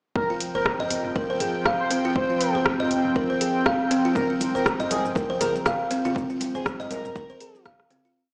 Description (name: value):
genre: afro house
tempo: 120 BPM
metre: 4/4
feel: swing 56% on 16ths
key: F minor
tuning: A4 = 440 Hz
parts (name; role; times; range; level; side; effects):
- expressive synth lead; melody; 0.2-7.6 s; Ab4 to C5; -33 LUFS; equal; analog chorus, tape echo
- warm analog pad; sustained chords; 0.2-8.1 s; F3 to G5; -31 LUFS; equal; chorus, tremolo, sidechain pumping
- warm 808-style bass; bass; 0.2-7.8 s; F1; -44 LUFS; equal; sidechain pumping
- electronic kick drum; drums; 0.2-7.8 s; none; -32 LUFS; equal; none
- buzzing kalimba; arpeggios; 0.3-8.2 s; C4 to F5; -29 LUFS; equal; sidechain pumping, tape echo
- deep house drum kit; drums; 0.4-8.0 s; hi-hat, rim click, toms; -30 LUFS; equal; none
- cabasa; percussion; 4.2-8.1 s; none; -47 LUFS; equal; none
- congas; percussion; 4.2-8.0 s; none; -37 LUFS; equal; none
room: moderate concert hall reverb, RT60 1.9 s, digital ambience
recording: played on a big sound system in a bare room, large studio reverb, small speaker sound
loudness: -24 LUFS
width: mono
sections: 0.2-8.2 drop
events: drop 0.2-8.2; fade-out 5.5-8.2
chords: 0.2 F5